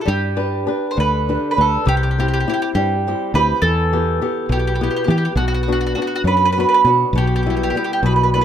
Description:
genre	italian folk, Italian serenade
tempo	68 BPM (dotted quarters)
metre	6/8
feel	straight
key	G major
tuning	A4 = 440 Hz
part	mandolin	melody	0.0-8.4 s	F#4 to C5	-19 LUFS	right 4 dB	none
part	flamenco guitar	accompaniment	0.1-8.4 s	B2 to B4	-21 LUFS	left 3 dB	none
part	fingered electric bass	bass	0.1-8.4 s	B1 to E3	-19 LUFS	equal	none
room	light reverb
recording	close, detailed microphones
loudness	-15 LUFS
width	side -9 dB against mid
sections	0.1-8.4 A section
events	none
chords	0.1 G; 1.9 C; 3.6 Em; 5.4 Bm; 7.2 Em/B

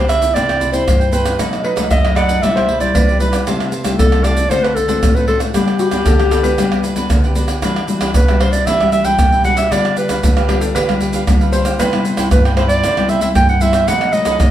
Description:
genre	samba and choro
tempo	115 BPM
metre	4/4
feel	straight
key	G major, E minor from 7.6 s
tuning	A4 = 441 Hz
part	warm clarinet	melody	0.0-14.5 s	G4 to G5	-17 LUFS	right 1 dB	plate reverb
part	cavaquinho	accompaniment	0.0-14.4 s	D4 to A5	-24 LUFS	right 4 dB	none
part	nylon-string guitar	accompaniment	0.0-14.5 s	F#2 to G4	-19 LUFS	left 3 dB	none
part	tube shaker, pandeiro, tamborim and surdo	percussion	0.1-14.5 s	none	-16 LUFS	right 1 dB	none
part	felt-muted upright piano	second line	1.6-12.2 s	F#4 to E5	-22 LUFS	left 1 dB	none
room	wet studio reverb, RT60 0.7 s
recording	heard from further back in the room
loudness	-12 LUFS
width	side -11 dB against mid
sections	0.0-7.6 A section; 7.6-14.5 B section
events	none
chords	0.4 Cmaj7; 1.4 B7; 2.4 Em7/B; 3.5 Am7/C; 4.5 D7; 5.5 Gmaj7; 7.6 Em9; 9.7 G7/D; 11.8 Cmaj7; 13.9 B7

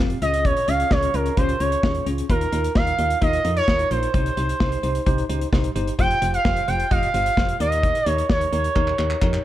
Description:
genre	synth-pop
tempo	130 BPM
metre	4/4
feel	straight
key	unclear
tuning	A4 = 441 Hz
part	bell-like tine electric piano	accompaniment	0.0-9.4 s	C4 to Eb5	-28 LUFS	left 1 dB	fast stereo tremolo, tape echo
part	solid FM bass	bass	0.0-9.4 s	F1 to F2	-25 LUFS	equal	none
part	modern studio drum kit	drums	0.1-9.4 s	handclaps, hi-hat, kick drum, snare drum	-24 LUFS	equal	none
part	expressive portamento lead	melody	0.2-9.4 s	Bb4 to G5	-22 LUFS	right 2 dB	chorus, tape echo
room	light reverb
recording	echo-heavy mix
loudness	-18 LUFS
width	side -13 dB against mid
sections	0.0-9.4 A section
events	drum fill 8.8-9.4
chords	0.2 Db; 2.3 Ebsus2; 4.1 Cm; 6.0 Fsus2; 7.6 Eb7

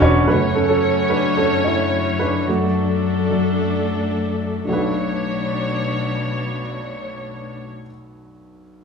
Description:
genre	piano-driven pop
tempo	109 BPM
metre	4/4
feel	straight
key	B minor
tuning	A4 = 440 Hz
part	warm upright piano	accompaniment	0.0-8.8 s	B1 to C#5	-20 LUFS	right 1 dB	none
part	dark studio string section	sustained chords	0.0-7.7 s	F#2 to C#5	-22 LUFS	left 3 dB	none
room	wet large studio reverb, RT60 1.4 s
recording	band playing live in one room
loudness	-17 LUFS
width	side -5 dB against mid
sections	0.3-4.7 A section; 4.7-6.9 B section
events	upright piano solo 0.3-4.7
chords	0.3 F#m; 2.5 D/F#; 4.7 Bm7

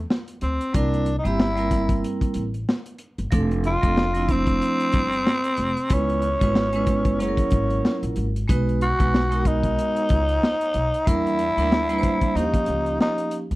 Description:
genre	hip hop, jazz-hop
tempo	93 BPM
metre	4/4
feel	swing 57% on 16ths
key	unclear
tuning	A4 = 441 Hz
part	growling tenor saxophone	melody	0.0-13.4 s	A3 to F#4	-23 LUFS	equal	none
part	upright bass	bass	0.0-13.6 s	F1 to E2	-26 LUFS	equal	none
part	crunchy breakbeat drum kit	drums	0.1-13.6 s	hi-hat, kick drum, snare drum	-23 LUFS	equal	none
part	vibraphone with hard mallets	accompaniment	0.7-13.4 s	F3 to C5	-26 LUFS	right 2 dB	none
room	little or no reverb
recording	dry, close 1970s-style studio recording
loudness	-20 LUFS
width	side -19 dB against mid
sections	0.0-13.6 A section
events	none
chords	0.0 D7(no3); 0.7 C7; 3.3 F6; 5.9 C#m7; 7.2 F#7; 8.5 B6; 11.1 Em7b5; 12.4 Eb9

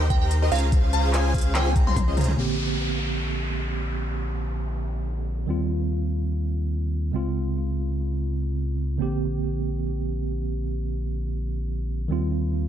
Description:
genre	future bass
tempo	free time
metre	none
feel	none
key	unclear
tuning	A4 = 436 Hz
part	airy dreamy lead	arpeggios	0.0-2.3 s	Eb5 to Bb5	-34 LUFS	equal	chorus, vintage 12-bit sampler grit, sidechain pumping
part	supersaw chords	riff	0.0-2.3 s	Db4 to Bb5	-29 LUFS	equal	sidechain pumping, low-pass filter, tape echo
part	saturated sub bass	bass	0.0-12.7 s	Bb1 to Eb2	-26 LUFS	equal	sidechain pumping
part	glassy wavetable pluck	melody	0.1-2.4 s	F5 to C6	-30 LUFS	right 2 dB	chorus, sidechain pumping, digital delay
part	electronic kick drum	drums	0.1-2.1 s	none	-22 LUFS	equal	none
part	pop drum kit	drums	0.1-2.4 s	handclaps, hi-hat, snare drum, toms	-29 LUFS	left 1 dB	low-pass filter on hats, low-pass filter on snare, low-pass filter on toms
part	tine electric piano	accompaniment	2.4-12.7 s	Db3 to G4	-29 LUFS	right 4 dB	medium stereo tremolo, sidechain pumping, tape echo
part	downlifter	sound effects	2.4-5.7 s	none	-33 LUFS	equal	none
room	digital ambience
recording	dark, warm production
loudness	-23 LUFS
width	side -10 dB against mid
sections	0.0-2.4 A section; 2.4-12.7 B section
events	drop 0.0-2.4; drum fill 1.6-2.4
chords	0.0 Eb6; 0.5 Dbmaj7; 2.4 Bb69; 5.5 Eb69; 7.1 Dbmaj7; 9.0 Bb69; 12.1 Eb69

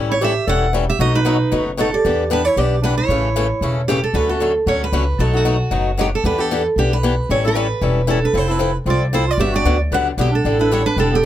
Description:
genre	acoustic string swing (jazz manouche)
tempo	229 BPM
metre	4/4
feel	swing 56% on 8ths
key	unclear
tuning	A4 = 440 Hz
part	picked swing-style acoustic guitar	accompaniment	0.0-11.2 s	B2 to A4	-21 LUFS	left 5 dB	none
part	upright bass	bass	0.0-11.3 s	E1 to E2	-20 LUFS	equal	none
part	picked steel-string acoustic guitar	melody	0.1-11.2 s	F#4 to F#5	-20 LUFS	right 2 dB	none
part	growling clarinet	second line	0.1-3.8, 8.1-11.3 s	B3 to B4	-23 LUFS	right 5 dB	none
room	little or no reverb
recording	close, detailed microphones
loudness	-15 LUFS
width	side -12 dB against mid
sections	0.0-4.1 A section; 4.1-11.3 B section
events	none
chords	0.0 A7; 1.0 B7; 2.0 Em7; 3.1 A; 4.1 Dmaj7; 5.2 B7; 6.2 Em7; 7.3 A7; 8.3 Fmaj7; 9.4 Gmaj7; 10.4 A7sus4

